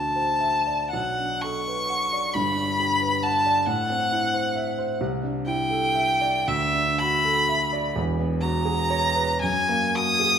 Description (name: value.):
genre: classical, impressionist duo for violin and grand piano.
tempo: 37-46 BPM (dotted quarters).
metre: 6/8.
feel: rubato.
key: E minor.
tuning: A4 = 439 Hz.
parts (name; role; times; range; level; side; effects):
rich violin; melody; 0.0-10.4 s; E5 to D#6; -22 LUFS; left 1 dB; none.
warm grand piano; accompaniment; 0.0-10.4 s; E1 to F#5; -26 LUFS; right 1 dB; none.
room: moderate scoring stage reverb, RT60 2.0 s.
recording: minimal, uncompressed stereo recording.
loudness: -21 LUFS.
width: side -8 dB against mid.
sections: 0.0-10.4 A section.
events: none.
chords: 0.0 D9; 0.9 Bm9; 2.3 Gmaj7; 3.7 Am6; 5.0 C69; 6.5 D69; 8.0 E69; 9.4 F#69.